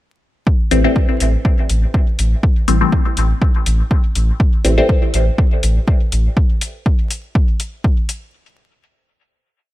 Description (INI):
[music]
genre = dub techno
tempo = 122 BPM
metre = 4/4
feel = swing 53% on 16ths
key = A minor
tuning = A4 = 440 Hz
[part]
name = electronic kick drum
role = drums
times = 0.5-7.9 s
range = none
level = -14 LUFS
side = equal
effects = overdrive
[part]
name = filtered dub chord stab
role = stabs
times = 0.7-6.6 s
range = E3 to C4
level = -19 LUFS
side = left 2 dB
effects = phaser, vintage 12-bit sampler grit, dub echo
[part]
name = soft dub sub bass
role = bass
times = 0.7-6.3 s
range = A1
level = -15 LUFS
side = equal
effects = tube saturation, sidechain pumping
[part]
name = electronic hi-hat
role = drums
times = 0.7-8.2 s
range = none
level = -24 LUFS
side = left 2 dB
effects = none
[sound]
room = digital ambience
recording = vinyl crackle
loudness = -13 LUFS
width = side -15 dB against mid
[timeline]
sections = 0.5-8.3 groove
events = none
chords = 0.5 Am7